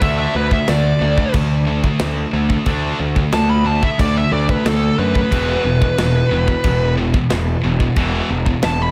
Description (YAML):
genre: heavy metal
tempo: 91 BPM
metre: 4/4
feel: straight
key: unclear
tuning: A4 = 440 Hz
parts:
  - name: high-gain lead guitar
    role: melody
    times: 0.0-8.9 s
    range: A4 to B5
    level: -23 LUFS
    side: equal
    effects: distortion
  - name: heavy high-gain guitar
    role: riff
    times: 0.0-8.9 s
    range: E2 to D4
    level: -26 LUFS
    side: equal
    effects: distortion
  - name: scooped high-gain guitar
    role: riff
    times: 0.0-8.9 s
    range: E2 to D4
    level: -23 LUFS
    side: equal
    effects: distortion
  - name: fuzz picked electric bass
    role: bass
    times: 0.0-8.9 s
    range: E1 to F#2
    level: -22 LUFS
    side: equal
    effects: overdrive
  - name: modern studio drum kit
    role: drums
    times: 0.0-8.8 s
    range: crash cymbal, kick drum, snare drum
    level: -24 LUFS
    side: equal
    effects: none
room: studio ambience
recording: none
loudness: -17 LUFS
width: mono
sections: 0.0-8.9 A section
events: lead electric guitar solo 0.0-8.9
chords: 0.0 D5; 5.3 E5